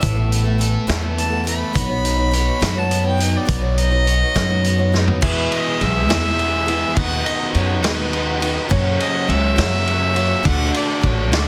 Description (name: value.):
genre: folk rock and heartland rock.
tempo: 69 BPM (dotted quarters).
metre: 6/8.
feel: straight.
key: E lydian from 5.2 s.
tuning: A4 = 439 Hz.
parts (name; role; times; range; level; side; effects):
warm fiddle; melody; 0.0-11.5 s; B4 to B5; -25 LUFS; equal; tape echo.
picked old ladder-braced acoustic guitar; accompaniment; 0.0-11.5 s; E2 to C#5; -28 LUFS; equal; none.
tonewheel organ; sustained chords; 0.0-11.5 s; B3 to D#6; -36 LUFS; equal; none.
crunchy overdriven guitar; riff; 0.0-11.5 s; E2 to C#5; -28 LUFS; equal; none.
upright bass; bass; 0.0-11.5 s; A1 to F#2; -22 LUFS; equal; none.
vintage drum kit; drums; 0.0-11.5 s; crash cymbal, hi-hat, kick drum, ride cymbal, snare drum, toms; -24 LUFS; equal; none.
bright concert grand piano; accompaniment; 5.2-11.5 s; C#4 to E5; -34 LUFS; equal; none.
room: little or no reverb.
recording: dense, heavily limited modern master.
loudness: -18 LUFS.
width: mono.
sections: 0.0-5.2 A section; 5.2-11.5 B section.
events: fiddle solo 0.0-5.2; drum fill 4.9.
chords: 0.0 Asus2; 1.8 Badd9; 5.2 E; 7.0 B/D#; 8.7 F#; 10.5 D.